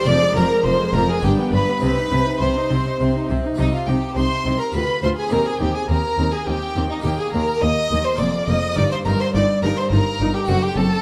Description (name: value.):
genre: classical, baroque-style concerto movement with solo episodes.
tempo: 104 BPM.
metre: 3/4.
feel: straight.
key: C minor.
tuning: A4 = 440 Hz.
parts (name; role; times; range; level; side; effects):
rich chamber violin section; melody; 0.0-11.0 s; Eb5 to Eb6; -30 LUFS; equal; none.
rich violin; melody; 0.0-11.0 s; Eb4 to Eb5; -27 LUFS; equal; none.
rich chamber violin section; second line; 0.0-10.9 s; Eb4 to Eb5; -28 LUFS; equal; none.
harpsichord; accompaniment; 0.0-11.0 s; D2 to C5; -29 LUFS; equal; none.
rich studio viola section; accompaniment; 0.0-10.8 s; F3 to F4; -30 LUFS; equal; none.
rich chamber cello section; bass; 0.1-10.9 s; D2 to C3; -26 LUFS; equal; none.
rich chamber double bass section; bass; 0.1-10.9 s; F1 to Eb2; -27 LUFS; equal; none.
room: moderate recital hall reverb, RT60 1.6 s.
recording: dark, warm production.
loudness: -20 LUFS.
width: mono.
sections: 0.0-3.6 A section; 3.6-11.0 A section.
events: none.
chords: 0.1 Ddim/F; 1.2 G; 1.8 Cm; 4.7 G7/D; 5.3 Cm/Eb; 7.0 Eb; 8.2 Bb7/F; 8.8 Eb/G; 10.5 D7/F#.